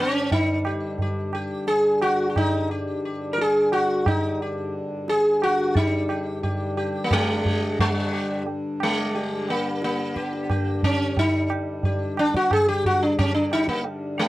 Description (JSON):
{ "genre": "indian classical, Hindustani", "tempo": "89 BPM", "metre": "4/4", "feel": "straight", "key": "G raga todi", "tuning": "A4 = 440 Hz", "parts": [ { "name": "sitar", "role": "melody", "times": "0.0-14.3 s", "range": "G3 to Bb4", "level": "-22 LUFS", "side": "equal", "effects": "none" }, { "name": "hand-pumped harmonium", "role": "drone", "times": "0.0-14.3 s", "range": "G2 to D3", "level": "-31 LUFS", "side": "left 1 dB", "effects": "none" }, { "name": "tabla", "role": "percussion", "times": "0.3-14.3 s", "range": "none", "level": "-26 LUFS", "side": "right 1 dB", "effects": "none" } ], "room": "light reverb", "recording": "dry, close 1970s-style studio recording", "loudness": "-21 LUFS", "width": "side -16 dB against mid", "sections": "0.0-5.8 A section; 5.8-14.3 B section", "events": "none", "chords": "none" }